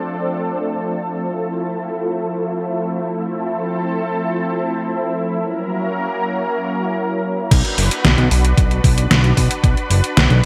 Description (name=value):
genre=synthwave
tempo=113 BPM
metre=4/4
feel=straight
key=unclear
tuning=A4 = 445 Hz
part: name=analog string pad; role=sustained chords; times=0.0-10.5 s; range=F3 to B4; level=-23 LUFS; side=equal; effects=ensemble chorus, sidechain pumping
part: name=fat analog bass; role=bass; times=7.5-10.4 s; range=F#1 to B1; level=-17 LUFS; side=equal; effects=tube saturation, sidechain pumping
part: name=detuned 8-bit digital drum machine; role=drums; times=7.5-10.4 s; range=crash cymbal, hi-hat, snare drum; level=-20 LUFS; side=equal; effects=overdrive, low-pass filter on hats, low-pass filter on cymbals, low-pass filter on snare, low-pass filter on room, gated reverb
part: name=electronic kick drum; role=drums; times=7.5-9.7 s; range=none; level=-18 LUFS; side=equal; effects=overdrive
room=moderate lush hall reverb, RT60 2.0 s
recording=bright 1980s-style digital production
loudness=-19 LUFS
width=mono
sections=0.0-7.5 A section; 7.5-10.5 B section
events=none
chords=0.0 Dm7; 3.3 Fmaj7; 5.4 F#7; 7.5 Bm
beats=0.08 0.61 | 1.14 1.67 2.20 2.73 | 3.27 3.80 4.33 4.86 | 5.39 5.92 6.45 6.98 | 7.51 8.04 8.57 9.11 | 9.64 10.17